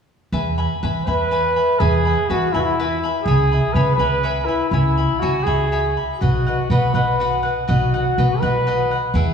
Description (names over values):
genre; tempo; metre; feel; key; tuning
mexican folk, mariachi; 82 BPM (dotted quarters); 6/8; straight; E major; A4 = 438 Hz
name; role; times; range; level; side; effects
cavaquinho; accompaniment; 0.3-9.3 s; E4 to B5; -24 LUFS; left 2 dB; none
upright bass; bass; 0.3-9.3 s; B1 to E3; -20 LUFS; right 1 dB; none
warm trumpet; melody; 1.1-9.0 s; E4 to B4; -20 LUFS; equal; none
room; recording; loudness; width
wet scoring stage reverb, RT60 1.9 s; recorded in a church or concert hall, small room ambience; -16 LUFS; side -6 dB against mid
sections
0.3-9.3 A section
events
none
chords
0.3 E; 3.3 C#m7; 6.2 B